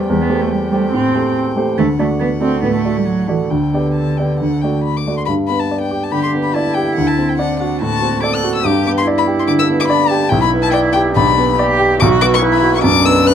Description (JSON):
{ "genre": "quick classical-period movement for piano trio", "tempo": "142 BPM", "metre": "4/4", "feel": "rubato", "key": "G major", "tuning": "A4 = 440 Hz", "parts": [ { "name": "warm violin", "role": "melody", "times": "0.0-13.3 s", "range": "F#5 to F#6", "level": "-20 LUFS", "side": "left 8 dB", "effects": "none" }, { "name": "warm grand piano", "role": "accompaniment", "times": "0.0-13.3 s", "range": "B1 to D5", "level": "-15 LUFS", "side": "equal", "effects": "none" }, { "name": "warm cello", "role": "second line", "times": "0.1-13.3 s", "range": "D3 to A4", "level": "-18 LUFS", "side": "right 4 dB", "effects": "none" } ], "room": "light reverb", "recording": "dark, warm production", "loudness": "-13 LUFS", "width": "side -8 dB against mid", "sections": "0.0-5.3 A section; 5.3-13.3 B section", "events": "none", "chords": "0.1 Am7/E; 1.8 D; 3.5 G/D; 4.4 D; 5.3 G; 7.0 D7; 8.7 G; 10.3 G/B; 12.0 Bm", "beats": "| 0.10 0.52 0.94 1.36 | 1.78 2.20 2.62 3.06 | 3.50 3.96 4.41 4.85 | 5.29 5.71 6.13 6.56 | 6.98 7.40 7.82 8.24 | 8.66 9.07 9.49 9.91 | 10.33 10.74 11.16 11.58 | 12.00 12.43 12.85 13.27" }